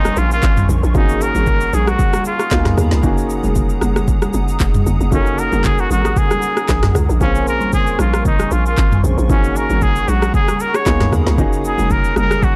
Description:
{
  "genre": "amapiano",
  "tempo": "115 BPM",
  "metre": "4/4",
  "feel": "swing 55% on 16ths",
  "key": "unclear",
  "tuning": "A4 = 441 Hz",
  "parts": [
    { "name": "trumpet with straight mute", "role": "melody", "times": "0.0-12.6 s", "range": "Db4 to Db5", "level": "-23 LUFS", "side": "equal", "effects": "delay" },
    { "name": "clear grand piano", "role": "accompaniment", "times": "0.0-12.6 s", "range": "Bb3 to Bb4", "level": "-26 LUFS", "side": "equal", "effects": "none" },
    { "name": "hollow soft pad", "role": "sustained chords", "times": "0.0-12.6 s", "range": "Ab4 to Eb6", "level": "-31 LUFS", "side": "equal", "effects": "ensemble chorus, sidechain pumping" },
    { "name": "hollow log drum bass", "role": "bass", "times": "0.0-12.6 s", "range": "F1 to Eb2", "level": "-20 LUFS", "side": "equal", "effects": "none" },
    { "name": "downlifter", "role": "sound effects", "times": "0.0-3.0 s", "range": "none", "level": "-38 LUFS", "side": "equal", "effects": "none" },
    { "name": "afro-pop drum kit", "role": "drums", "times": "0.1-12.6 s", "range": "handclaps, kick drum, rim click, shaker, snare drum, toms", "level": "-20 LUFS", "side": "equal", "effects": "overdrive" },
    { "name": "congas", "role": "percussion", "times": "0.1-12.6 s", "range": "none", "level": "-27 LUFS", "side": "equal", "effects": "none" }
  ],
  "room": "small room reverb",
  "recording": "dark, warm production",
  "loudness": "-16 LUFS",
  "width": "mono",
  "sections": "0.0-12.6 A section",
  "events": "none",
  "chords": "0.0 Bbm9; 0.9 Ab9sus4; 2.5 Db13; 3.0 Gb69; 7.2 Bbm9; 9.3 Ab9sus4; 10.9 Db13; 11.4 Gb69"
}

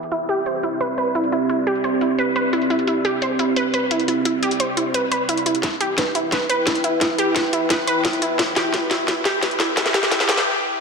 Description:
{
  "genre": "dark technical drum and bass",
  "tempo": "174 BPM",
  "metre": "4/4",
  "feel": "straight",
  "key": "E minor",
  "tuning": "A4 = 440 Hz",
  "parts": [
    { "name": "dark analog pad", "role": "sustained chords", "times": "0.0-10.8 s", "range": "C4 to G5", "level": "-24 LUFS", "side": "right 1 dB", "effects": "chorus, phaser, sidechain pumping" },
    { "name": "drum and bass drum kit", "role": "drums", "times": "0.0-10.4 s", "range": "hi-hat, snare drum", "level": "-22 LUFS", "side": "left 1 dB", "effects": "none" },
    { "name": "wide unison pluck", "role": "arpeggios", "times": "0.1-10.4 s", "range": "E4 to C5", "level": "-21 LUFS", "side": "right 1 dB", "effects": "sidechain pumping, dub echo" },
    { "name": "electronic kick drum", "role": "drums", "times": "5.6-10.2 s", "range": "none", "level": "-30 LUFS", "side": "left 1 dB", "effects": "high-pass filter on kick, high-pass filter on room" }
  ],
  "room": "wet lush hall reverb, RT60 1.9 s",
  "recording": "dense, heavily limited modern master, high-pass filter, low-pass filter",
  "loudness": "-18 LUFS",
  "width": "side -4 dB against mid",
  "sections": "0.0-5.6 A section; 5.6-10.8 B section",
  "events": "filter sweep on synth arpeggio sound 0.0-5.6; filter sweep 0.0-5.6; build-up 5.6-10.8; drum fill 5.6-10.5; break 10.5-10.8",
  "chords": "0.1 C; 5.6 Em"
}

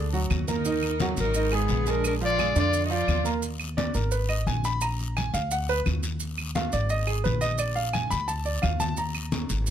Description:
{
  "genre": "latin, Cuban son and guajira",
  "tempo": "173 BPM",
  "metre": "4/4",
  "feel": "straight",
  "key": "unclear",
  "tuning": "A4 = 439 Hz",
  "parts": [
    { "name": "warm clarinet", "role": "melody", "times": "0.0-3.3 s", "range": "Ab4 to Eb5", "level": "-28 LUFS", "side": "left 3 dB", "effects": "plate reverb" },
    { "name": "rich studio violin section", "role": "second line", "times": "0.0-3.3 s", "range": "Cb4 to Gb4", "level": "-34 LUFS", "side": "right 1 dB", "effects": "none" },
    { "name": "clear concert grand piano", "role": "arpeggios", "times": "0.0-9.6 s", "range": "D3 to Cb6", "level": "-29 LUFS", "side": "right 4 dB", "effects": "none" },
    { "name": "upright bass", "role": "bass", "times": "0.0-9.7 s", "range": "Ab1 to F2", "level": "-28 LUFS", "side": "equal", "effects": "none" },
    { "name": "congas", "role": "percussion", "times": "0.1-9.7 s", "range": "none", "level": "-33 LUFS", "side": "left 2 dB", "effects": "none" },
    { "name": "maracas", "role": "percussion", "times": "0.1-9.7 s", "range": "none", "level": "-38 LUFS", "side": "right 6 dB", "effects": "none" },
    { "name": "claves", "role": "percussion", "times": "0.3-9.3 s", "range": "none", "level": "-36 LUFS", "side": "right 6 dB", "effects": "none" },
    { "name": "guiro", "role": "percussion", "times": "0.3-9.7 s", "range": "none", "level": "-39 LUFS", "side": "left 6 dB", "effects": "none" }
  ],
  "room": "light reverb",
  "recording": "close, detailed microphones",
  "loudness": "-24 LUFS",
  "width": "side -10 dB against mid",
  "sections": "0.0-3.4 A section; 3.4-9.7 B section",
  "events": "grand piano solo 3.4-9.7",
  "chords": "0.0 D; 0.7 Ebm; 1.3 Abmadd9; 2.0 Bb7; 2.7 Bb; 3.4 Absus2; 4.8 Bb; 5.5 D6; 6.2 Ab5; 6.9 Absus2; 7.6 Bb; 8.3 Dm; 9.0 Eb5"
}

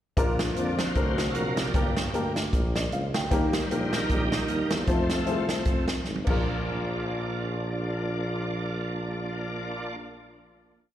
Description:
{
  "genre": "uptempo gospel",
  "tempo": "153 BPM",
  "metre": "4/4",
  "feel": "swing 57% on 8ths",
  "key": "Bb major",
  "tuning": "A4 = 441 Hz",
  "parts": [
    { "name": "warm upright piano", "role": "accompaniment", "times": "0.2-10.0 s", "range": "Bb1 to G5", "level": "-32 LUFS", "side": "left 3 dB", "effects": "slapback echo" },
    { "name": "bright tonewheel organ", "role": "sustained chords", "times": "0.2-10.0 s", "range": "C3 to F5", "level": "-32 LUFS", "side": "right 1 dB", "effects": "fast rotary speaker, overdrive, chorus vibrato" },
    { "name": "mellow tuba", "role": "bass", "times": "0.2-10.0 s", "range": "G1 to F2", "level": "-30 LUFS", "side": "equal", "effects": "none" },
    { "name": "swinging big-band drum kit", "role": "drums", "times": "0.2-6.3 s", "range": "crash cymbal, hi-hat, kick drum, snare drum, toms", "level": "-28 LUFS", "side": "equal", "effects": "none" }
  ],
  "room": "light reverb",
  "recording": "live gig heard through the venue's PA, recital hall reverb",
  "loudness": "-25 LUFS",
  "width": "side -11 dB against mid",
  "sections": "0.2-6.4 breakdown; 6.4-9.6 final hit",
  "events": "tonewheel organ solo 0.2-6.4; drum fill 6.0-6.4",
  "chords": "0.2 Bb; 1.0 D7alt; 1.7 Gm; 3.3 Eb; 4.9 F; 6.2 Bb"
}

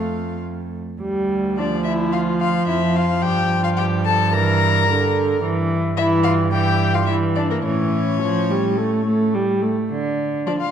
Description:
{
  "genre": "quick classical-period movement for string quartet",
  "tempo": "108 BPM",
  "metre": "4/4",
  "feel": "straight",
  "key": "D minor",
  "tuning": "A4 = 440 Hz",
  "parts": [
    { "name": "rich violin", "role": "melody", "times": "0.0-10.7 s", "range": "Bb4 to Bb5", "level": "-24 LUFS", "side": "left 7 dB", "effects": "none" },
    { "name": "dark violin", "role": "second line", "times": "0.0-10.7 s", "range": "Bb3 to Bb4", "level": "-25 LUFS", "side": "left 3 dB", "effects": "none" },
    { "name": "warm viola", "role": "accompaniment", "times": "0.0-10.5 s", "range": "D3 to A3", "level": "-21 LUFS", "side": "right 1 dB", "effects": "none" },
    { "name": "warm cello", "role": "bass", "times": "0.0-10.4 s", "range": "D2 to D3", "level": "-23 LUFS", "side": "right 4 dB", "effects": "none" }
  ],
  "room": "wet scoring stage reverb, RT60 1.5 s",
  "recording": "dark, warm production",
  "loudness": "-17 LUFS",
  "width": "side -8 dB against mid",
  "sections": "0.0-1.0 A section; 1.0-10.7 B section",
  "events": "none",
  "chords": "0.0 F; 1.0 Dm; 3.2 Gm; 5.4 G5; 7.7 A; 9.9 Dm"
}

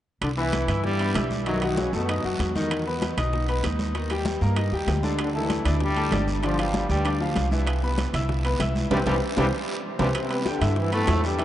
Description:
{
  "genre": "latin, salsa",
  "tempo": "193 BPM",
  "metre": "4/4",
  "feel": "straight",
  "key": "C major",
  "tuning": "A4 = 439 Hz",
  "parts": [
    { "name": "bright trombone section", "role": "melody", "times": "0.2-2.2, 5.2-11.4 s", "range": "F#2 to F4", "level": "-29 LUFS", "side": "equal", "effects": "none" },
    { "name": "upright bass", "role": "bass", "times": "0.2-11.4 s", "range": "G1 to G2", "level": "-26 LUFS", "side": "equal", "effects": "none" },
    { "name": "bongos", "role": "percussion", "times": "0.2-11.4 s", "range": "none", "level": "-37 LUFS", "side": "left 5 dB", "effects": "none" },
    { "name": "congas", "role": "percussion", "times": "0.2-11.4 s", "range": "none", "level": "-33 LUFS", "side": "equal", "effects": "none" },
    { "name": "guiro", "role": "percussion", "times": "0.2-11.4 s", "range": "none", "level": "-39 LUFS", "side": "right 3 dB", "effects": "none" },
    { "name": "timbales", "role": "percussion", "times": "0.2-11.4 s", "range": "none", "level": "-34 LUFS", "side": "right 5 dB", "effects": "none" },
    { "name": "bright concert grand piano", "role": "accompaniment", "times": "0.4-11.4 s", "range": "D3 to E6", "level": "-28 LUFS", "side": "left 1 dB", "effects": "none" }
  ],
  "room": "wet cathedral reverb, RT60 6.0 s",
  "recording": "in a vast, echoing space, nothing above 10.4 kHz",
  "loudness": "-22 LUFS",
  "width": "side -12 dB against mid",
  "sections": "0.2-10.2 A section; 10.2-11.4 B section",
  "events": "band accent 8.9-10.2; drum fill 9.2-10.2",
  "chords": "0.2 Cmaj7; 1.5 B9; 2.7 E5; 3.9 Eb; 5.2 Dsus2; 6.4 G5; 7.7 Cmaj7; 10.2 Cmaj9"
}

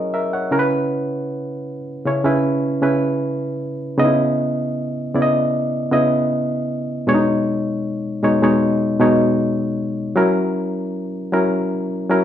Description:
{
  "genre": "soul",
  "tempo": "78 BPM",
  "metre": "4/4",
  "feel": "straight",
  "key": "C# dorian",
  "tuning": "A4 = 440 Hz",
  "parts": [
    { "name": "barky reed electric piano", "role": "solo", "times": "0.0-12.2 s", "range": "B2 to F#5", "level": "-17 LUFS", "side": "equal", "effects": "none" }
  ],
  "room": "moderate large studio reverb, RT60 0.8 s",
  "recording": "band playing live in one room",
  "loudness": "-17 LUFS",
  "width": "side -10 dB against mid",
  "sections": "0.0-4.0 A section; 4.0-12.2 A section",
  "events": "none",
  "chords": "0.0 F#7; 0.5 C#m7; 4.0 C#m9; 7.1 B69; 10.2 F#7"
}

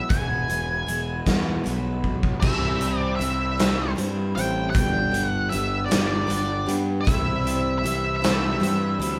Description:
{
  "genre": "quiet-loud alternative rock",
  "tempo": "52 BPM (dotted quarters)",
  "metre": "6/8",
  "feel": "straight",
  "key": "unclear",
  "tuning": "A4 = 440 Hz",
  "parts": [
    { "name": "octave-fuzz lead guitar", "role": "melody", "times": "0.0-9.2 s", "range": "D5 to G#5", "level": "-29 LUFS", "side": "equal", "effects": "distortion" },
    { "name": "picked steel-string acoustic guitar", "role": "arpeggios", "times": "0.0-9.2 s", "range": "E2 to G4", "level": "-31 LUFS", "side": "equal", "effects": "none" },
    { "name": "fuzz picked electric bass", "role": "bass", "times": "0.1-9.2 s", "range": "E1 to G2", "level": "-30 LUFS", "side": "equal", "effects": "overdrive" },
    { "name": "huge arena drum kit", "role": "drums", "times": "0.1-9.2 s", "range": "crash cymbal, hi-hat, kick drum, snare drum", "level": "-28 LUFS", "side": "equal", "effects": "none" }
  ],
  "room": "moderate studio ambience, RT60 0.5 s",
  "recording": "band playing live in one room",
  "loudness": "-24 LUFS",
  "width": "mono",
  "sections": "0.0-2.4 A section; 2.4-9.2 B section",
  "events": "drum fill 2.0-2.4",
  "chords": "0.0 E; 2.4 C; 4.7 G; 7.1 C"
}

